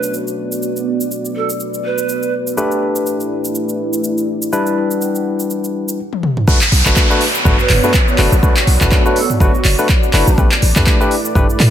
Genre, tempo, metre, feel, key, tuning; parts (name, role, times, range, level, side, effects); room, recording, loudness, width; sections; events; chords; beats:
afro house; 123 BPM; 4/4; swing 57% on 16ths; B minor; A4 = 441 Hz
large pan pipes; melody; 0.0-2.3, 7.6-10.4 s; E4 to B4; -23 LUFS; right 5 dB; ping-pong delay
dark analog pad; sustained chords; 0.0-11.7 s; A3 to G5; -22 LUFS; right 1 dB; chorus, sidechain pumping
barky tine electric piano; stabs; 0.0-11.5 s; G3 to B4; -19 LUFS; left 2 dB; sidechain pumping, ping-pong delay
deep house drum kit; drums; 0.0-11.7 s; handclaps, hi-hat, shaker, toms; -18 LUFS; equal; studio reverb
warm 808-style bass; bass; 6.5-11.7 s; E1 to A2; -14 LUFS; equal; sidechain pumping
electronic kick drum; drums; 6.5-11.5 s; -14 LUFS; equal; studio reverb
downlifter; sound effects; 6.5-10.4 s; -20 LUFS; right 1 dB
light reverb; -12 LUFS; side -10 dB against mid
0.0-6.5 A section; 6.5-11.7 B section
filter sweep on analog synth pad 0.0-6.5; drum fill 6.1-6.5; drop 6.5-11.7
0.0 Bm7; 2.6 A9sus4; 4.5 Em7; 6.5 Bm7; 10.4 A9sus4
0.14 | 0.62 1.11 1.60 2.09 | 2.57 3.06 3.55 4.04 | 4.53 5.01 5.50 5.99 | 6.48 6.96 7.45 7.94 | 8.43 8.91 9.40 9.89 | 10.38 10.87 11.35